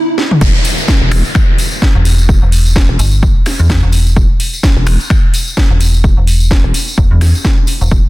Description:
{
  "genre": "bass house",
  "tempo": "128 BPM",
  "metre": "4/4",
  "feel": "swing 57% on 16ths",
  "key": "E minor",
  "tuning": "A4 = 442 Hz",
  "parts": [
    { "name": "house drum kit", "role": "drums", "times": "0.2-7.8 s", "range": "crash cymbal, finger snaps, hi-hat, snare drum, toms", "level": "-18 LUFS", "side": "equal", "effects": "overdrive" },
    { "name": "vowel-sweep wobble bass", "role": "bass", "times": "0.4-8.0 s", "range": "E1", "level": "-13 LUFS", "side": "equal", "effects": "chorus, sidechain pumping, high-pass filter" },
    { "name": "electronic kick drum", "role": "drums", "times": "0.4-8.0 s", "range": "none", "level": "-12 LUFS", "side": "equal", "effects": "overdrive, high-pass filter on kick, high-pass filter on room" },
    { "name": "tambourine", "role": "percussion", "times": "0.4-8.0 s", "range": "none", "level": "-24 LUFS", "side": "left 1 dB", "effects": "none" },
    { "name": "downlifter", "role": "sound effects", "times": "0.4-4.2 s", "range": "none", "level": "-18 LUFS", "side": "equal", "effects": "none" },
    { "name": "metallic FM bass", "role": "bass", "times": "2.0-7.9 s", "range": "E1 to E2", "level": "-10 LUFS", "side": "equal", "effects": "overdrive, sidechain pumping" }
  ],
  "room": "little or no reverb",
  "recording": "dense, heavily limited modern master",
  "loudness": "-8 LUFS",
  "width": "side -18 dB against mid",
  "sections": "0.4-8.1 A section",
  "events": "break 0.0-0.4; drum fill 0.2; drop 0.4-8.1",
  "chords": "0.4 E5",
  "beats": "| 0.41 0.88 1.35 1.82 | 2.29 2.76 3.23 3.69 | 4.16 4.63 5.10 5.57 | 6.04 6.51 6.98 7.45 | 7.91"
}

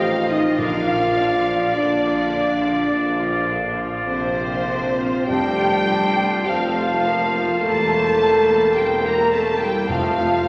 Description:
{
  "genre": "classical",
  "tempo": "52 BPM",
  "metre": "4/4",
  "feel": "rubato",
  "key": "Bb major",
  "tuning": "A4 = 439 Hz",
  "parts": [
    { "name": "warm studio violin section", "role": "melody", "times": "0.0-10.5 s", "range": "C5 to Bb5", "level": "-30 LUFS", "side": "equal", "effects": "none" },
    { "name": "clear oboe", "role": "second line", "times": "0.0-10.5 s", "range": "C5 to Eb5", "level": "-29 LUFS", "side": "equal", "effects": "none" },
    { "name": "mellow hollow flute section", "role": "second line", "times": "0.0-10.5 s", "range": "F5 to Bb5", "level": "-32 LUFS", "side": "equal", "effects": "none" },
    { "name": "rich symphonic violin section", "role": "second line", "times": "0.0-10.5 s", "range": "C5 to Bb5", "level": "-30 LUFS", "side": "equal", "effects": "none" },
    { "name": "mellow bassoon", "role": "accompaniment", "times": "0.0-10.5 s", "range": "A3 to F4", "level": "-31 LUFS", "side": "equal", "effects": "none" },
    { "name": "rich symphonic viola section", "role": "accompaniment", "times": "0.0-10.5 s", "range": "D3 to F4", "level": "-33 LUFS", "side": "equal", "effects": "none" },
    { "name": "dark French horn section", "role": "sustained chords", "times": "0.0-10.5 s", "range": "C4 to Bb4", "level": "-23 LUFS", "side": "equal", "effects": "none" },
    { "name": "clear symphonic cello section", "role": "bass", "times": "0.0-10.5 s", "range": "C3 to Bb3", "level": "-34 LUFS", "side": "equal", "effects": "none" },
    { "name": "rich symphonic double bass section", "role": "bass", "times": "0.0-10.5 s", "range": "E1 to Bb1", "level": "-36 LUFS", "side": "equal", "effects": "none" },
    { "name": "warm tuba", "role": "bass", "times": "0.0-10.5 s", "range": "E1 to Bb1", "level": "-32 LUFS", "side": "equal", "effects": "none" },
    { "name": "timpani", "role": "percussion", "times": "0.6-10.5 s", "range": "F2 to Bb2", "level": "-36 LUFS", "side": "equal", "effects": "none" }
  ],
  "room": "wet concert hall reverb, RT60 1.9 s",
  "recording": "none",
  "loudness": "-20 LUFS",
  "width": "mono",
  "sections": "0.0-10.5 A section",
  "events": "none",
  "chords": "0.0 F7/A; 0.6 Bb; 5.3 F; 7.6 C7/E; 9.9 F",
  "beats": "| 0.57 1.75 2.89 4.05 | 5.28 6.46 7.62 8.75 | 9.88"
}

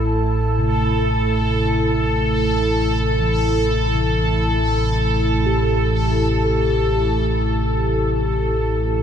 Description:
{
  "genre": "dark ambient drone",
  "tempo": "free time",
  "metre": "none",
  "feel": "none",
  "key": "A minor",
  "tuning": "A4 = 441 Hz",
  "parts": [
    { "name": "dark analog pad", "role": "sustained chords", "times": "0.0-9.0 s", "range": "A3 to A5", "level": "-23 LUFS", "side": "equal", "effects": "chorus" },
    { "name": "deep rumbling drone", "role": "drone", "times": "0.0-9.0 s", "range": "A1 to A2", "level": "-20 LUFS", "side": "equal", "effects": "built-in reverb, wide subtle chorus" },
    { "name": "bubbling stepped-filter texture", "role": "texture", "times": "0.0-9.0 s", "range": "A4", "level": "-23 LUFS", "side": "right 2 dB", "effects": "chorus, built-in reverb" },
    { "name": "bronze singing bowl", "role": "arpeggios", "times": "0.6-9.0 s", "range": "C3 to A4", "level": "-25 LUFS", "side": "left 3 dB", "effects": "ping-pong delay" }
  ],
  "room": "moderate huge ambient reverb, RT60 8.1 s",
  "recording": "in a vast, echoing space",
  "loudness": "-16 LUFS",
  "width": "side -8 dB against mid",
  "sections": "0.0-9.0 A section",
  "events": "none",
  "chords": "0.0 A5",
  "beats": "free time"
}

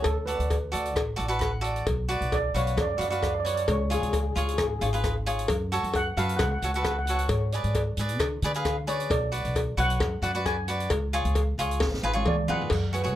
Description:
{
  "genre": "calypso",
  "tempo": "133 BPM",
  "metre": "4/4",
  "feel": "straight",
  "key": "unclear",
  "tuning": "A4 = 442 Hz",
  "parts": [
    { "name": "steel pan", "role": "melody", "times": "0.0-13.2 s", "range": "G#4 to G#5", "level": "-31 LUFS", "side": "right 1 dB", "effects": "plate reverb" },
    { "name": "cavaquinho", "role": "accompaniment", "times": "0.0-13.2 s", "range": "E#4 to F#5", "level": "-30 LUFS", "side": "equal", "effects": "none" },
    { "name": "cowbell", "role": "percussion", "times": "0.0-12.8 s", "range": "none", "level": "-30 LUFS", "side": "left 3 dB", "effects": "none" },
    { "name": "upright bass", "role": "bass", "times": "0.1-13.2 s", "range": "G#1 to D3", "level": "-29 LUFS", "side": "equal", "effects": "none" },
    { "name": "open jazz drum kit", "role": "drums", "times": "0.1-13.2 s", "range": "crash cymbal, hi-hat, kick drum, rim click, snare drum, toms", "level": "-32 LUFS", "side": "equal", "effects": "none" }
  ],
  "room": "moderate small room reverb, RT60 0.5 s",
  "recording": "none",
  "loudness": "-24 LUFS",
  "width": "side -12 dB against mid",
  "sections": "0.0-12.7 A section",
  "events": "steel pan solo 0.0-12.7; cavaquinho fill 1.2-1.9; drum fill 11.8-12.7",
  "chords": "0.1 D; 1.9 Bm; 3.7 C#; 5.5 F#m; 7.3 G#dim; 9.1 Bm; 10.9 C#",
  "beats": "| 0.06 0.52 0.97 1.42 | 1.88 2.33 2.78 3.24 | 3.69 4.14 4.59 5.04 | 5.50 5.95 6.40 6.85 | 7.30 7.75 8.21 8.66 | 9.11 9.56 10.01 10.46 | 10.91 11.37 11.82 12.27 | 12.72"
}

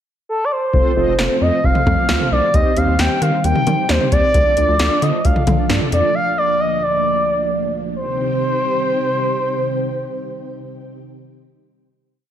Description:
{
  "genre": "synth-pop",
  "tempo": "133 BPM",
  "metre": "4/4",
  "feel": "straight",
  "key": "C dorian",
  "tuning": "A4 = 440 Hz",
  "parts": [
    { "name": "expressive portamento lead", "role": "melody", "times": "0.3-11.0 s", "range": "A4 to G5", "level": "-18 LUFS", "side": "equal", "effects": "chorus" },
    { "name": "mellow synth brass", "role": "accompaniment", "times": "0.7-6.1 s", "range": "C4 to Eb5", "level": "-22 LUFS", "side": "right 2 dB", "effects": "chorus" },
    { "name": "string machine, cellos", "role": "sustained chords", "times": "0.7-11.0 s", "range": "D2 to G5", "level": "-24 LUFS", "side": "left 1 dB", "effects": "ensemble chorus" },
    { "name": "rubbery square bass", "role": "bass", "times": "0.7-6.0 s", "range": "F1 to Eb3", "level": "-19 LUFS", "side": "equal", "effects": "none" },
    { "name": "electro analog drum machine", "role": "drums", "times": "0.7-6.0 s", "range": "hi-hat, kick drum, snare drum, toms", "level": "-18 LUFS", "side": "equal", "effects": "gated reverb" }
  ],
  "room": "moderate recital hall reverb, RT60 1.5 s, digital ambience",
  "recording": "none",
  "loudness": "-14 LUFS",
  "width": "side -10 dB against mid",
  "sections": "0.0-0.7 pickup bar; 0.7-8.0 pre-chorus; 8.0-11.6 final chord",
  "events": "none",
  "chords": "0.0 N.C.; 0.7 F; 2.5 Cm/Eb; 4.3 Dm; 6.1 Bb/D; 8.0 Cm",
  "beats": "0.28 | 0.73 1.19 1.64 2.09 | 2.54 2.99 3.44 3.89 | 4.34 4.79 5.25 5.70 | 6.15 6.60 7.05 7.50 | 7.95 8.40 8.86 9.31 | 9.76 10.21 10.66"
}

